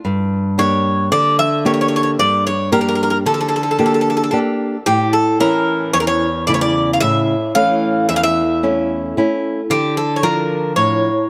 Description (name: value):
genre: greek folk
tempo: 112 BPM (eighths)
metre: 9/8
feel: straight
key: unclear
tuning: A4 = 439 Hz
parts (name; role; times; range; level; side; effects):
- nylon-string guitar; accompaniment; 0.0-11.3 s; E2 to G4; -19 LUFS; equal; none
- Greek bouzouki; melody; 0.6-11.3 s; G4 to F5; -19 LUFS; equal; none
room: light reverb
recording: dark, warm production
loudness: -16 LUFS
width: mono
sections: 0.0-11.3 A section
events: none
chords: 0.0 Gm; 4.9 A; 9.7 Dm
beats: | 0.04 0.57 1.11 1.65 2.19 2.72 3.26 3.80 4.33 | 4.87 5.41 5.94 6.48 7.02 7.55 8.09 8.62 9.16 | 9.70 10.23 10.77